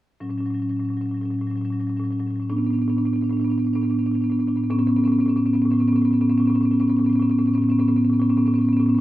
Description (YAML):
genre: classical, contemporary piece for solo marimba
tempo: 106 BPM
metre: 4/4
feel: rubato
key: A major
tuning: A4 = 438 Hz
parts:
  - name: marimba with soft mallets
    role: solo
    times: 0.2-9.0 s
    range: A2 to D4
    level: -18 LUFS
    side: equal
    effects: none
room: wet stone room reverb, RT60 1.0 s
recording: heard from further back in the room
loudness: -18 LUFS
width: side -15 dB against mid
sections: 0.2-9.0 A section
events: none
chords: 0.2 A6; 2.5 Bm7/A; 4.7 Aadd9